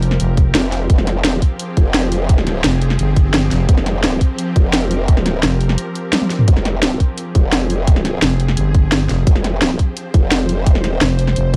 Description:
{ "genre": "dark technical drum and bass", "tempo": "172 BPM", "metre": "4/4", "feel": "straight", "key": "F minor", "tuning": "A4 = 440 Hz", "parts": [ { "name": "swarming drone", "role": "sustained chords", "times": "0.0-11.6 s", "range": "F3 to C5", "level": "-27 LUFS", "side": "equal", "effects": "built-in reverb, sidechain pumping" }, { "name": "growling FM bass", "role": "bass", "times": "0.0-0.5, 2.6-5.8, 8.2-11.6 s", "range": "F1 to G1", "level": "-18 LUFS", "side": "equal", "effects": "none" }, { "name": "drum and bass drum kit", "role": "drums", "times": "0.0-11.6 s", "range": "hi-hat, snare drum, toms", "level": "-20 LUFS", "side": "equal", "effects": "small room ambience" }, { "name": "electronic kick drum", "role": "drums", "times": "0.4-11.6 s", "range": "none", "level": "-14 LUFS", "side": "equal", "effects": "small room ambience" }, { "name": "growl bass", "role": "bass", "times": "0.5-11.0 s", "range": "F1", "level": "-21 LUFS", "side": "equal", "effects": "chorus" } ], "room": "little or no reverb", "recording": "dark, warm production", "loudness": "-16 LUFS", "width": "mono", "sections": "0.0-11.6 A section", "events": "break 5.8-6.5; drum fill 6.1-6.5", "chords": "0.0 Fm", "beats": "0.20 0.55 | 0.90 1.25 1.59 1.94 | 2.29 2.64 2.99 3.34 | 3.69 4.04 4.38 4.73 | 5.08 5.43 5.78 6.13 | 6.48 6.83 7.18 7.53 | 7.87 8.22 8.57 8.92 | 9.27 9.62 9.97 10.31 | 10.66 11.01 11.36" }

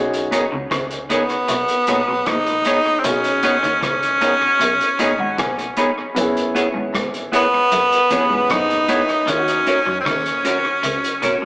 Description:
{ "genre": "lovers rock reggae", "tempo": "77 BPM", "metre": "4/4", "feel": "straight", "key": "B major", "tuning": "A4 = 440 Hz", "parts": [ { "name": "warm grand piano", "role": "accompaniment", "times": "0.0-11.4 s", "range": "E3 to B5", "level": "-25 LUFS", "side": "equal", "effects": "none" }, { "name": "semi-hollow electric guitar", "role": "riff", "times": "0.0-11.4 s", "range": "E2 to F#3", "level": "-30 LUFS", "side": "equal", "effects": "tape echo" }, { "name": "deep dub fingered electric bass", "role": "bass", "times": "0.0-11.4 s", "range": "E1 to F#2", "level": "-37 LUFS", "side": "equal", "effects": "none" }, { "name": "cloth-damped thuddy drum kit", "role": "drums", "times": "0.1-11.4 s", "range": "hi-hat, kick drum, rim click", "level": "-24 LUFS", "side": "equal", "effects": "tape echo" }, { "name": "clean electric guitar", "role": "stabs", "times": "0.3-11.3 s", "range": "B3 to C#5", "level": "-22 LUFS", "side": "equal", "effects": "spring reverb" }, { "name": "edgy tenor saxophone", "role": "melody", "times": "1.1-11.4 s", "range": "B3 to D#4", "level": "-17 LUFS", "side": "equal", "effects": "tape echo" } ], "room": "moderate stone room reverb, RT60 1.2 s", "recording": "rough rehearsal-room recording, small speaker sound", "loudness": "-15 LUFS", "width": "side -24 dB against mid", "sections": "0.0-11.4 A section", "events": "grand piano fill 4.6-6.2", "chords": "0.0 B69; 6.2 F#9sus4; 9.3 D#m7", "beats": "0.71 1.49 2.27 | 3.05 3.83 4.61 5.39 | 6.17 6.95 7.72 8.51 | 9.28 10.06 10.84" }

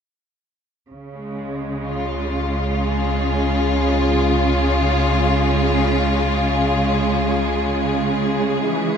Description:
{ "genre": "ambient", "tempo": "62 BPM", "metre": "4/4", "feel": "straight", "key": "Db major", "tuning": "A4 = 440 Hz", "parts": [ { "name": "clear studio string section", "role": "sustained chords", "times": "0.9-9.0 s", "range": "Db3 to Ab4", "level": "-18 LUFS", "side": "equal", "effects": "low-pass filter" }, { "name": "round analog bass", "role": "bass", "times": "0.9-9.0 s", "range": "Db2 to E2", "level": "-24 LUFS", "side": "equal", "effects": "none" }, { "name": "bowed-like drone", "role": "drone", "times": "6.6-9.0 s", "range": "none", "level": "barely audible", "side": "none", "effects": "none" }, { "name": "concert harp", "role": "arpeggios", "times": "3.8-9.0 s", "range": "none", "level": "barely audible", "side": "none", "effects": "none" } ], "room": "wet lush hall reverb, RT60 2.6 s", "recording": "dreamy mix soaked in reverb", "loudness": "-17 LUFS", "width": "side -7 dB against mid", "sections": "0.9-9.0 A section", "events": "none", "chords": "0.9 Dbmaj7", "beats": "| 0.92 1.89 2.86 3.83 | 4.79 5.76 6.73 7.70 | 8.66" }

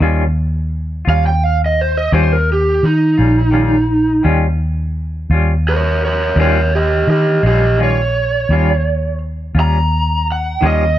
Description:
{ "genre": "slow blues", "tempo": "57 BPM (dotted quarters)", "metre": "12/8", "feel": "straight", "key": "Eb mixolydian", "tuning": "A4 = 442 Hz", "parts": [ { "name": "clean electric guitar", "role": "accompaniment", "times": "0.0-10.8 s", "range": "Eb3 to F4", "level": "-20 LUFS", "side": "left 3 dB", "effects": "tremolo, plate reverb" }, { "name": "vintage muted fingered electric bass", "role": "bass", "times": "0.0-11.0 s", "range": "Bb1 to Eb3", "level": "-15 LUFS", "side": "equal", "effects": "none" }, { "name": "lead guitar through a small cranked amp", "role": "melody", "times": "1.1-11.0 s", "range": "Eb4 to Bb5", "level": "-16 LUFS", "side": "right 2 dB", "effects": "overdrive, plate reverb" } ], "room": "light reverb", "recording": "dark, warm production", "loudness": "-12 LUFS", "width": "side -12 dB against mid", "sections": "0.0-11.0 A section", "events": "lead electric guitar solo 0.0-11.0", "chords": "0.0 Eb9", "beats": "| 0.01 1.07 2.13 3.19 | 4.24 5.30 6.36 7.42 | 8.48 9.55 10.61" }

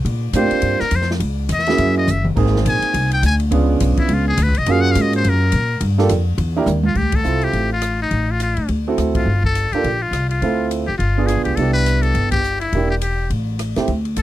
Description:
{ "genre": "jazz, small-group swing and bop", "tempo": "208 BPM", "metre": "4/4", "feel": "swing 59% on 8ths", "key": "D minor from 7.0 s", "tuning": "A4 = 441 Hz", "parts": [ { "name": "upright bass", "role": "bass", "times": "0.0-14.2 s", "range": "E1 to Bb2", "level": "-18 LUFS", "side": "left 1 dB", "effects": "none" }, { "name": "open jazz drum kit", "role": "drums", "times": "0.1-14.2 s", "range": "crash cymbal, hi-hat, kick drum, ride cymbal, rim click, snare drum, toms", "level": "-26 LUFS", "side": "left 1 dB", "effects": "none" }, { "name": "trumpet with metal mute", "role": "melody", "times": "0.4-14.2 s", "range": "Eb4 to Ab5", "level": "-21 LUFS", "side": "left 3 dB", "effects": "none" }, { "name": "warm concert grand piano", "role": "accompaniment", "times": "0.4-13.9 s", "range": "A3 to Bb4", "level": "-20 LUFS", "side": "right 5 dB", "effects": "none" } ], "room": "little or no reverb", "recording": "dry, close 1970s-style studio recording", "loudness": "-15 LUFS", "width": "side -14 dB against mid", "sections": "0.0-7.0 A section; 7.0-14.2 B section", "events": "muted trumpet solo 0.0-7.0; drum fill 2.1, 6.7; band accent 7.1, 9.1, 12.3", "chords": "0.1 Bb69; 1.2 Dbm; 1.8 Gb9; 2.4 Ab; 3.5 Db7b9; 4.7 Gbmaj9; 5.8 Gm9; 6.4 Ebmaj7; 7.0 Dm9; 8.1 F7/A; 8.7 D7; 9.3 Gm9; 10.4 Dm9; 11.0 G7b9; 11.6 Cmaj9; 12.7 Em7b5; 13.3 A5", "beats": "| 0.05 0.34 0.63 0.92 | 1.21 1.50 1.79 2.08 | 2.36 2.65 2.94 3.23 | 3.52 3.80 4.09 4.38 | 4.67 4.95 5.24 5.53 | 5.82 6.10 6.39 6.68 | 6.96 7.25 7.54 7.83 | 8.12 8.41 8.69 8.98 | 9.27 9.56 9.85 10.14 | 10.42 10.71 11.00 11.29 | 11.58 11.86 12.15 12.44 | 12.73 13.02 13.30 13.59 | 13.88 14.17" }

